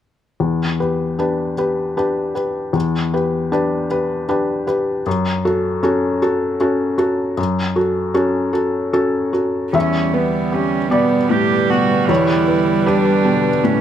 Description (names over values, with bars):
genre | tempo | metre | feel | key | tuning
neoclassical piano and strings | 77 BPM | 3/4 | rubato | E dorian | A4 = 440 Hz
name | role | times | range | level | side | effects
felt-muted upright piano | accompaniment | 0.4-13.8 s | E2 to E5 | -17 LUFS | left 2 dB | none
warm cello | second line | 9.7-13.8 s | B3 to G4 | -19 LUFS | right 6 dB | none
warm viola | accompaniment | 9.7-13.8 s | G3 | -21 LUFS | right 6 dB | none
warbly tape-like pad | sustained chords | 9.7-13.8 s | D3 to B4 | -22 LUFS | equal | chorus, built-in reverb
room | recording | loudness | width
light reverb | none | -16 LUFS | side -10 dB against mid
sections
0.4-9.7 A section; 9.7-13.8 B section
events
none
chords
0.4 Em7; 5.1 F#m; 9.7 Em7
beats
| 0.40 1.19 1.97 | 2.75 3.52 4.29 | 5.06 5.83 6.60 | 7.38 8.15 8.94 | 9.75 10.53 11.31 | 12.09 12.87 13.64